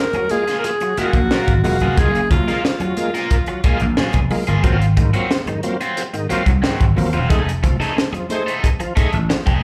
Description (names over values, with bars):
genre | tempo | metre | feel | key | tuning
funk | 90 BPM | 4/4 | straight | unclear | A4 = 440 Hz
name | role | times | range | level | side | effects
edgy alto saxophone | melody | 0.0-3.9 s | F4 to Bb4 | -24 LUFS | equal | plate reverb
bright tonewheel organ | stabs | 0.0-9.4 s | Ab2 to G#4 | -27 LUFS | equal | overdrive, chorus vibrato, slow rotary speaker, plate reverb
biting overdriven guitar | accompaniment | 0.1-9.6 s | Gb3 to Bb4 | -27 LUFS | equal | phaser, plate reverb, slapback echo
crisp fusion drum kit | drums | 0.1-9.6 s | hi-hat, kick drum, snare drum | -22 LUFS | equal | none
congas | percussion | 0.1-9.6 s | none | -34 LUFS | equal | none
vintage slap bass | bass | 1.0-9.6 s | Eb1 to C2 | -21 LUFS | equal | none
warm horn section | second line | 8.3-8.5 s | A3 to C5 | -27 LUFS | equal | plate reverb, slapback echo
room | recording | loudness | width
light reverb | live gig heard through the venue's PA, club reverb | -18 LUFS | mono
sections
0.0-9.6 A section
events
band accent 7.3-9.6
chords
0.0 Gbmaj9; 4.6 Ab13; 7.3 F7#9